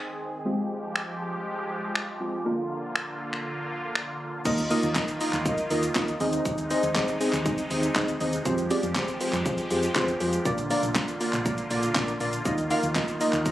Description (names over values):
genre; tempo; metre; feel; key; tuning
dance-pop; 120 BPM; 4/4; straight; Eb major; A4 = 440 Hz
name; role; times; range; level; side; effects
deep mellow chord stab; accompaniment; 0.0-13.5 s; Eb3 to F5; -27 LUFS; equal; chorus, phaser, sidechain pumping
filtered supersaw swell; sustained chords; 0.0-13.5 s; C3 to Ab4; -33 LUFS; equal; sidechain pumping
pop drum kit; drums; 1.0-13.5 s; crash cymbal, finger snaps, handclaps, hi-hat, kick drum, shaker, snare drum; -29 LUFS; equal; none
fingered electric bass; bass; 4.5-13.5 s; Bb1 to F2; -32 LUFS; equal; sidechain pumping
group handclap; percussion; 5.0-13.1 s; none; barely audible; none; none
room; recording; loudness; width
light reverb; recorded on a phone in the room, club ambience, compression; -24 LUFS; side -14 dB against mid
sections
0.0-4.5 A section; 4.5-13.5 B section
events
drop 4.5-13.5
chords
0.5 Fmadd9; 2.5 Bb; 4.5 Ebsus2; 6.2 Ab; 8.5 Fmadd9; 10.5 Bb; 12.5 Ebsus2